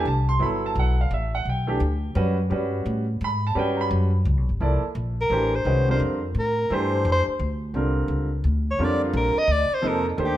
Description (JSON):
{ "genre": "jazz", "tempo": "172 BPM", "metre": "3/4", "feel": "swing 65% on 8ths", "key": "unclear", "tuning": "A4 = 440 Hz", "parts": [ { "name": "warm baby grand piano", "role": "accompaniment", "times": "0.0-10.4 s", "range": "C3 to C6", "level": "-26 LUFS", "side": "right 2 dB", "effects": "none" }, { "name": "upright bass", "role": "bass", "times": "0.0-10.4 s", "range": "G1 to A2", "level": "-24 LUFS", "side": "equal", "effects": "none" }, { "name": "warm soprano saxophone", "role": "melody", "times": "5.2-10.4 s", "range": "Eb4 to Eb5", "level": "-24 LUFS", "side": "equal", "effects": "none" } ], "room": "moderate large studio reverb, RT60 1.3 s", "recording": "none", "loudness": "-21 LUFS", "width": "side -13 dB against mid", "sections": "0.0-4.6 A section; 4.6-10.4 A section", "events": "soprano saxophone solo 4.6-10.4", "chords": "0.4 Gmaj9; 4.6 C13sus4; 8.8 F13sus4", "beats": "0.05 | 0.40 0.75 1.10 | 1.45 1.80 2.15 | 2.50 2.85 3.20 | 3.55 3.90 4.25 | 4.60 4.95 5.30 | 5.65 6.00 6.35 | 6.70 7.04 7.39 | 7.74 8.09 8.44 | 8.79 9.13 9.48 | 9.83 10.18" }